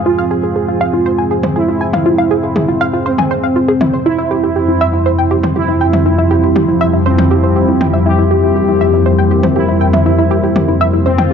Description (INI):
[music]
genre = melodic techno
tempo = 120 BPM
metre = 4/4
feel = straight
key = unclear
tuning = A4 = 440 Hz
[part]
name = dark analog pad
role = sustained chords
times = 0.0-11.3 s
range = F2 to C5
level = -15 LUFS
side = equal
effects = chorus
[part]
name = tight sequenced synth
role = arpeggios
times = 0.0-11.3 s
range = E4 to Ab5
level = -17 LUFS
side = equal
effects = chorus, tape echo
[part]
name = deep dark ambient pad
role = texture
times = 0.0-11.3 s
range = F3 to C5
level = -18 LUFS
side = left 3 dB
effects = chorus, built-in reverb
[part]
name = analog synth brass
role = melody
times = 0.1-11.3 s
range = C4 to G4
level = -16 LUFS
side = right 2 dB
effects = chorus, ping-pong delay
[part]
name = electronic toms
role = drums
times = 1.4-11.3 s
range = none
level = -19 LUFS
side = left 2 dB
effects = overdrive, low-pass filter on cymbals, low-pass filter on toms, low-pass filter on room
[part]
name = swell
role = sound effects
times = 11.2-11.3 s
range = none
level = -22 LUFS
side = right 3 dB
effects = none
[sound]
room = light reverb, digital ambience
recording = none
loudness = -10 LUFS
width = side -7 dB against mid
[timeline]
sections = 0.0-11.3 A section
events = filter sweep on analog polysynth 0.0-11.3; filter sweep on analog synth pad 0.0-11.3; swell 11.2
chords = 0.0 Fm; 4.1 C/F